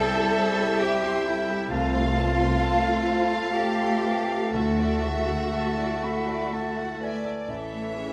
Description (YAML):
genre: cinematic, emotional film score for orchestra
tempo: 60-67 BPM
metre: 3/4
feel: rubato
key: unclear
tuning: A4 = 442 Hz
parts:
  - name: rich chamber violin section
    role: melody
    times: 0.0-8.1 s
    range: C#5 to F5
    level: -37 LUFS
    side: equal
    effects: none
  - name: mellow clarinet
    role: second line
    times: 0.0-7.1 s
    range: E5 to F5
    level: -37 LUFS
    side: equal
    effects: none
  - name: mellow hollow concert flute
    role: second line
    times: 0.0-8.1 s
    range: D5 to A5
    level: -36 LUFS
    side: equal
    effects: none
  - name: warm oboe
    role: second line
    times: 0.0-7.5 s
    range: G5 to B5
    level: -36 LUFS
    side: equal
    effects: none
  - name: warm symphonic violin section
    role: second line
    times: 0.0-8.1 s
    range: A4 to C6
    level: -40 LUFS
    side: equal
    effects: none
  - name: warm concert grand piano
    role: accompaniment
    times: 0.0-8.1 s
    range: A1 to B4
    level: -34 LUFS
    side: equal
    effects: none
  - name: warm symphonic viola section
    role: accompaniment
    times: 0.0-8.1 s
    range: E3 to C#4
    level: -33 LUFS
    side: equal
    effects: none
  - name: mellow French horn section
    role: sustained chords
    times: 0.0-7.2 s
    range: G3 to F4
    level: -34 LUFS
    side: equal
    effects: none
  - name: dark symphonic cello section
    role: bass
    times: 0.0-8.1 s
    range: E4 to A4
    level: -32 LUFS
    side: equal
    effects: none
  - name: warm studio double bass section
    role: bass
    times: 1.7-5.4 s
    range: C2 to D2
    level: -32 LUFS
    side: equal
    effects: none
room: moderate scoring stage reverb, RT60 2.0 s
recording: none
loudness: -25 LUFS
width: mono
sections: 0.0-7.5 A section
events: none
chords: 0.0 C; 1.7 F/C; 4.5 Dadd9; 7.5 A